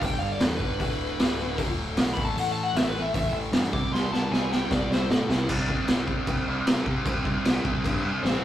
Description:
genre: punk rock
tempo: 153 BPM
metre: 4/4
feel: straight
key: unclear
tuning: A4 = 440 Hz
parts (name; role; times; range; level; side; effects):
- bluesy overdriven lead guitar; melody; 0.0-5.5, 8.2-8.4 s; C4 to D6; -30 LUFS; left 2 dB; distortion
- distorted electric guitar; riff; 0.0-8.4 s; D2 to C4; -34 LUFS; left 7 dB; overdrive
- sludgy distorted guitar; riff; 0.0-8.4 s; D2 to C4; -33 LUFS; right 6 dB; overdrive
- growling picked electric bass; bass; 0.0-8.4 s; D1 to C3; -32 LUFS; equal; overdrive
- raw garage drum kit; drums; 0.0-8.3 s; crash cymbal, hi-hat, kick drum, snare drum; -25 LUFS; equal; none
room: light reverb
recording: rough rehearsal-room recording, tube saturation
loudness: -23 LUFS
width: side -12 dB against mid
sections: 0.0-5.5 A section; 5.5-8.4 B section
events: lead electric guitar solo 0.0-5.5; drum fill 3.9-5.5, 8.2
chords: 0.0 G5; 0.8 D5; 2.2 A5; 3.7 C5

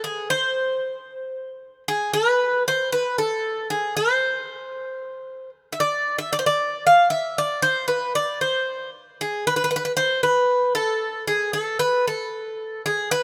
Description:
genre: greek folk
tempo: 230 BPM (eighths)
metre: 7/8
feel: straight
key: unclear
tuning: A4 = 440 Hz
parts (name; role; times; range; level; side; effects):
- Greek bouzouki; solo; 0.0-13.2 s; G#4 to F5; -23 LUFS; equal; none
room: moderate plate reverb, RT60 3.5 s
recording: none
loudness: -22 LUFS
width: mono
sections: 0.0-13.1 A section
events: none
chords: none

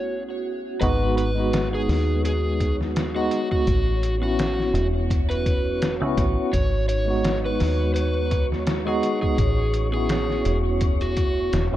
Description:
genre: trip hop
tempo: 84 BPM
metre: 4/4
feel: swing 56% on 16ths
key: G# phrygian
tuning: A4 = 440 Hz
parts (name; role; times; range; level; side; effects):
- overdriven slide guitar; melody; 0.0-11.7 s; F#4 to C#5; -28 LUFS; equal; vintage 12-bit sampler grit, tape echo
- tine electric piano; accompaniment; 0.0-11.8 s; G#3 to F#4; -27 LUFS; equal; medium stereo tremolo, tape echo
- warbly tape-like pad; sustained chords; 0.0-11.8 s; G#3 to B4; -31 LUFS; right 5 dB; chorus, built-in reverb
- deep dub fingered electric bass; bass; 0.0-11.8 s; E1 to D#2; -24 LUFS; equal; none
- wind-like tuned noise texture; texture; 0.0-11.8 s; F#4 to C#5; -36 LUFS; left 3 dB; built-in reverb
- trip hop sampler-style drum kit; drums; 0.8-11.7 s; hi-hat, kick drum, snare drum; -26 LUFS; equal; none
room: little or no reverb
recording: echo-heavy mix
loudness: -20 LUFS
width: side -13 dB against mid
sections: 0.8-11.8 A section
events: none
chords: 0.0 A69; 0.8 G#m7; 3.7 A69; 6.5 G#m7; 9.4 A69

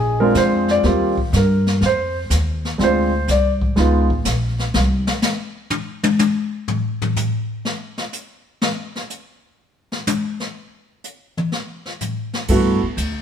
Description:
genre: jazz piano trio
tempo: 124 BPM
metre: 4/4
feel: swing 69% on 8ths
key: G minor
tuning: A4 = 440 Hz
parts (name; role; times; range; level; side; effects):
- warm concert grand piano; melody; 0.0-4.1, 12.5-12.8 s; G3 to D5; -18 LUFS; right 1 dB; none
- upright bass; bass; 0.0-5.1, 12.5-13.2 s; Bb1 to G2; -19 LUFS; equal; none
- jazz brush drum kit; drums; 0.3-13.1 s; brushed snare drum, crash cymbal, hi-hat, kick drum, ride cymbal, snare drum, toms; -22 LUFS; left 2 dB; none
room: moderate stone room reverb, RT60 1.3 s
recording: band playing live in one room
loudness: -17 LUFS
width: side -8 dB against mid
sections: 0.0-12.5 A section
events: grand piano solo 0.0-13.2; drum solo 4.7-12.5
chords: 0.0 Bb9; 0.8 Eb69; 2.8 Dm7b5; 3.8 C#9; 4.7 N.C.; 12.5 Gmaj13

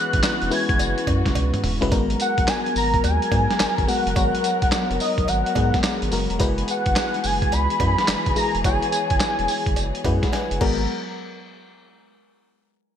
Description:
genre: R&B, new jack swing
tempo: 107 BPM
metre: 4/4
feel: swing 65% on 16ths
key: G# minor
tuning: A4 = 439 Hz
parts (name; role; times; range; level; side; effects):
- wide unison lead; melody; 0.0-10.3 s; D#5 to G#6; -24 LUFS; equal; none
- FM electric piano with soft pad layer; accompaniment; 0.0-10.9 s; G#3 to G#5; -26 LUFS; left 4 dB; chorus
- muted studio string section; sustained chords; 0.0-10.9 s; E3 to A#4; -30 LUFS; left 2 dB; none
- round analog bass; bass; 0.1-10.9 s; E1 to G#2; -25 LUFS; right 1 dB; none
- boom bap sampler-style drum kit; drums; 0.1-10.8 s; crash cymbal, handclaps, hi-hat, kick drum, snare drum, tambourine, toms; -24 LUFS; right 1 dB; gated reverb
- cowbell; percussion; 0.2-10.9 s; none; -37 LUFS; right 8 dB; none
room: light reverb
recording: bright 1980s-style digital production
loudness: -19 LUFS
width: side -9 dB against mid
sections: 0.0-1.9 A section; 1.9-10.9 B section; 10.9-13.0 C section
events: drum fill 1.4-1.9, 10.3-10.9; FM electric piano fill 9.8-10.9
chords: 0.0 F#9sus4; 1.9 G#m9; 6.4 F#9sus4; 10.6 G#m9; 10.9 N.C.

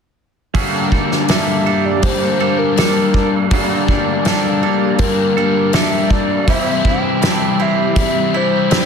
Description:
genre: rock, shoegaze and dream pop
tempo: 81 BPM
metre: 4/4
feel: straight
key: G dorian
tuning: A4 = 440 Hz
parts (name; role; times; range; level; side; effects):
- overdriven semi-hollow guitar; riff; 0.5-8.9 s; G2 to G4; -17 LUFS; left 9 dB; analog chorus
- twangy electric guitar; riff; 0.5-8.9 s; G2 to A4; -20 LUFS; right 12 dB; reverse reverb
- loose indie drum kit; drums; 0.5-8.9 s; hi-hat, kick drum, snare drum; -18 LUFS; equal; none
- reedy FM lead; melody; 1.3-8.9 s; Bb4 to G5; -20 LUFS; right 1 dB; chorus, analog delay
- picked twelve-string acoustic guitar; arpeggios; 1.3-8.9 s; Bb3 to D5; -26 LUFS; right 10 dB; analog chorus, analog delay
room: light reverb, small room ambience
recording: dense, heavily limited modern master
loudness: -13 LUFS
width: side -6 dB against mid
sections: 0.5-8.9 A section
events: none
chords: 0.5 Gmadd9; 6.5 C

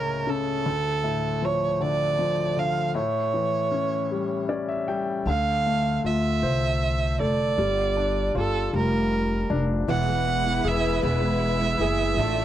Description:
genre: six-eight pop ballad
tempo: 52 BPM (dotted quarters)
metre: 6/8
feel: straight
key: D harmonic minor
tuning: A4 = 440 Hz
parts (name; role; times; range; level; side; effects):
- warm violin; melody; 0.0-12.4 s; A4 to F#5; -26 LUFS; right 4 dB; none
- warm concert grand piano; accompaniment; 0.0-12.4 s; C#2 to G5; -27 LUFS; left 4 dB; none
- upright bass; bass; 5.3-12.4 s; E1 to D2; -26 LUFS; equal; none
- warm studio string section; sustained chords; 9.9-12.4 s; G#3 to D5; -30 LUFS; left 3 dB; none
- picked steel-string acoustic guitar; arpeggios; 9.9-12.4 s; E2 to F4; -30 LUFS; right 9 dB; none
room: little or no reverb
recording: dry, close 1970s-style studio recording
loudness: -22 LUFS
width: side -11 dB against mid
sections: 0.0-5.3 A section; 5.3-12.4 B section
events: grand piano fill 4.1-5.3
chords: 0.0 A/C#; 0.7 Dm; 2.9 A7; 5.3 Dm7; 7.6 Gm7; 9.9 E

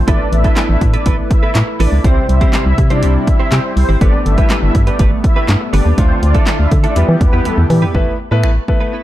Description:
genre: dance-pop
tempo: 122 BPM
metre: 4/4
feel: straight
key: A minor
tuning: A4 = 440 Hz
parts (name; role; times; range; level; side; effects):
- chorused pulse-width pad; sustained chords; 0.0-7.9 s; C3 to B4; -23 LUFS; left 2 dB; sidechain pumping
- organ-like FM bass; bass; 0.0-8.6 s; G1 to E3; -13 LUFS; equal; sidechain pumping
- filtered supersaw swell; melody; 0.1-7.8 s; G3 to E5; -22 LUFS; equal; sidechain pumping, ping-pong delay
- clear concert grand piano; accompaniment; 0.1-8.9 s; G3 to B4; -22 LUFS; left 2 dB; sidechain pumping
- direct-recorded clean electric guitar; riff; 0.1-9.0 s; A3 to C5; -24 LUFS; right 5 dB; analog chorus
- punchy analog drum machine; drums; 0.1-8.8 s; finger snaps, handclaps, hi-hat, kick drum, snare drum, toms; -14 LUFS; equal; none
room: little or no reverb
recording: dark, warm production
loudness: -11 LUFS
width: side -14 dB against mid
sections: 0.0-7.9 A section; 7.9-9.0 B section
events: drop 0.0-7.9; drum fill 7.5-7.9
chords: 0.1 Asus2; 2.0 C; 4.0 Gadd9; 6.0 Dm; 7.0 Em; 7.9 Asus2

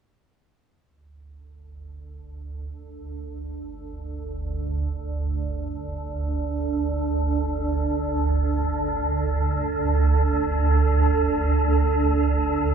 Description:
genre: ambient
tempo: free time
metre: none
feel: none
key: unclear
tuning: A4 = 440 Hz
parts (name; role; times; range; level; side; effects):
- swarming drone; solo; 1.7-12.7 s; G1 to D2; -22 LUFS; right 2 dB; built-in reverb, tape echo
room: wet cathedral reverb, RT60 5.1 s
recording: small room ambience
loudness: -21 LUFS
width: side -7 dB against mid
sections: 0.8-12.7 A section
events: none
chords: 0.8 G5

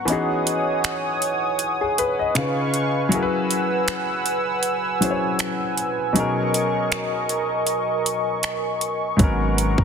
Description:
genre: contemporary R&B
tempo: 79 BPM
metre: 4/4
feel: swing 54% on 16ths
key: unclear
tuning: A4 = 441 Hz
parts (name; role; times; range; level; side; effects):
- clear concert grand piano; accompaniment; 0.0-9.8 s; G#2 to D#5; -24 LUFS; left 2 dB; none
- warm analog pad; sustained chords; 0.0-9.8 s; B3 to E6; -23 LUFS; right 2 dB; chorus
- trap drum kit; drums; 0.1-9.8 s; finger snaps, hi-hat, kick drum; -24 LUFS; right 2 dB; soft clipping on snare
- long sustained 808-style bass; bass; 9.2-9.8 s; G#1; -22 LUFS; equal; none
room: light reverb, digital ambience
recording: dense, heavily limited modern master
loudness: -20 LUFS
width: side -6 dB against mid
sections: 0.0-9.8 A section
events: break 0.0-9.2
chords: 0.1 Emaj13; 2.4 C#7; 3.1 F#9sus4; 6.2 Bmaj13; 9.2 G#m11

